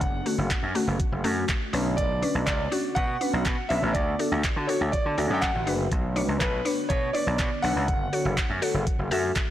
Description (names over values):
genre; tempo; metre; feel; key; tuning
dance-pop; 122 BPM; 4/4; straight; B minor; A4 = 440 Hz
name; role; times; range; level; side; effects
clear concert grand piano; melody; 0.0-9.1 s; B4 to G5; -30 LUFS; right 1 dB; dub echo
ethereal airy pad; sustained chords; 0.0-9.5 s; D3 to F#4; -35 LUFS; right 1 dB; ensemble chorus, built-in reverb, sidechain pumping
gritty slap bass; bass; 0.0-9.3 s; F#1 to D3; -27 LUFS; equal; overdrive, sidechain pumping
smooth R&B drum kit; drums; 0.0-9.5 s; handclaps, hi-hat, kick drum; -29 LUFS; equal; none
downlifter; sound effects; 0.1-2.0 s; none; barely audible; none; none
mallet-like synth pluck; accompaniment; 0.3-9.4 s; A3 to E5; -30 LUFS; left 3 dB; chorus, sidechain pumping
group handclap; percussion; 0.5-9.5 s; none; -41 LUFS; right 6 dB; none
room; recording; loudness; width
light reverb, digital ambience; blown-out, overdriven recording, overdrive; -23 LUFS; side -12 dB against mid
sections
0.0-9.5 A section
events
none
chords
0.0 F#m; 1.7 Bmadd9; 3.9 D; 5.9 Bmadd9; 7.9 F#m